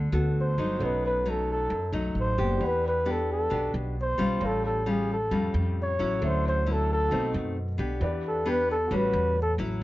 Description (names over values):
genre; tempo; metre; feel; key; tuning
bossa nova; 133 BPM; 4/4; straight; unclear; A4 = 439 Hz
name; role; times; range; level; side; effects
nylon-string guitar; accompaniment; 0.0-9.8 s; F#2 to A4; -30 LUFS; left 2 dB; none
warm grand piano; accompaniment; 0.0-9.8 s; C#4 to B#5; -38 LUFS; right 3 dB; none
upright bass; bass; 0.0-9.8 s; F#1 to F#2; -29 LUFS; equal; none
breathy flugelhorn; melody; 0.4-9.5 s; G#4 to C#5; -27 LUFS; equal; none
room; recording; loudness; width
light reverb; dark, warm production, nothing above 7.6 kHz; -24 LUFS; side -17 dB against mid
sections
0.0-9.8 A section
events
flugelhorn solo 0.0-9.8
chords
0.0 Gmaj9; 0.8 B7; 2.6 Em7; 4.4 A7alt; 6.2 Dmaj9; 7.1 B7b9; 8.0 Em7; 8.9 A13